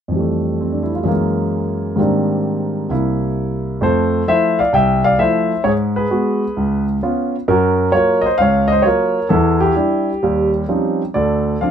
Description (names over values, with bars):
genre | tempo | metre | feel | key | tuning
solo jazz | 131 BPM | 4/4 | swing 67% on 8ths | unclear | A4 = 439 Hz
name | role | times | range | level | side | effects
warm grand piano | solo | 0.1-11.7 s | C2 to G5 | -14 LUFS | equal | none
room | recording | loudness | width
light reverb | minimal, uncompressed stereo recording | -14 LUFS | side -8 dB against mid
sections
0.1-3.8 A section; 3.8-11.7 B section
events
none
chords
0.1 Fmaj9; 1.1 Gb9; 2.0 Abmaj9#11; 2.9 C7; 3.8 Fmaj7; 5.6 Abm7; 6.6 Db7; 7.5 Gbmaj7; 9.3 Em7; 10.2 Eb13; 11.1 Dm7